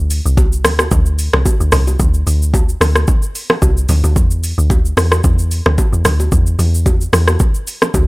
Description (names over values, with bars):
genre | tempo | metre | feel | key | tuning
amapiano | 111 BPM | 4/4 | swing 55% on 16ths | unclear | A4 = 444 Hz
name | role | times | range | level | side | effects
deep log drum bass | bass | 0.0-8.1 s | C2 to E2 | -14 LUFS | equal | none
afro-pop drum kit | drums | 0.1-8.1 s | hi-hat, kick drum, rim click, shaker | -14 LUFS | equal | overdrive
bongos and congas | percussion | 0.4-8.1 s | none | -22 LUFS | right 1 dB | none
room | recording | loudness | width
digital ambience | dry, gritty hardware recording, transformer saturation | -11 LUFS | side -22 dB against mid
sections
0.0-8.1 A section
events
none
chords
none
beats
0.38 0.92 1.46 | 2.00 2.54 3.08 3.62 | 4.16 4.70 5.24 5.78 | 6.32 6.86 7.40 7.94